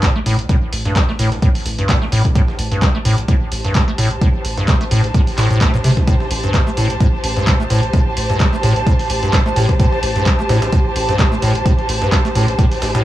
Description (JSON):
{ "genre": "acid house", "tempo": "129 BPM", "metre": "4/4", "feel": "swing 55% on 16ths", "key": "A minor", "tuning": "A4 = 440 Hz", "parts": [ { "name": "acid bass, square", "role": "riff", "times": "0.0-13.0 s", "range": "G2 to A3", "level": "-18 LUFS", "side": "equal", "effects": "lush chorus, tape echo" }, { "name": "round analog bass", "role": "bass", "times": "0.0-13.0 s", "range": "A1", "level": "-22 LUFS", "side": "equal", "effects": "sidechain pumping" }, { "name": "breakbeat sampler-style drum kit", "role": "drums", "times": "0.0-13.0 s", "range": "hi-hat, snare drum", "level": "-31 LUFS", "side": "equal", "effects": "none" }, { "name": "electronic kick drum", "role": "drums", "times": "0.0-12.7 s", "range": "none", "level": "-16 LUFS", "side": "equal", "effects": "none" }, { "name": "punchy analog drum machine", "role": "drums", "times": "0.0-13.0 s", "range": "handclaps, hi-hat", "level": "-23 LUFS", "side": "equal", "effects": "none" }, { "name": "warm symphonic string section", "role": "texture", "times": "0.0-13.0 s", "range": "G4 to A5", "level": "-23 LUFS", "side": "equal", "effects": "sidechain pumping" } ], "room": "little or no reverb", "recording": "dry, gritty hardware recording, cassette tape, small room ambience", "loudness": "-13 LUFS", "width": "side -14 dB against mid", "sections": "0.0-13.0 A section", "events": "fade-in on string section 0.0-13.0", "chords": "0.0 Am7" }